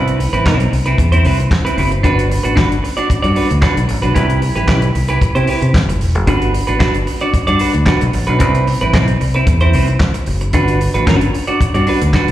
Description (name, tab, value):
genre	disco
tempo	113 BPM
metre	4/4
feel	straight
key	G major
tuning	A4 = 440 Hz
part	clean electric guitar	accompaniment	0.0-12.3 s	C4 to D5	-16 LUFS	right 1 dB	spring reverb, slapback echo
part	fingered electric bass	bass	0.0-12.3 s	E1 to C3	-15 LUFS	equal	none
part	damped 70s drum kit	drums	0.1-12.3 s	handclaps, hi-hat, kick drum, snare drum	-17 LUFS	equal	none
room	light reverb, small room ambience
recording	live gig heard through the venue's PA, club reverb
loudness	-12 LUFS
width	side -13 dB against mid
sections	0.0-12.3 A section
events	none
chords	0.0 Cmaj7; 2.0 Gmaj7; 4.2 Cmaj7; 6.3 Gmaj7; 8.4 Cmaj7; 10.5 Gmaj7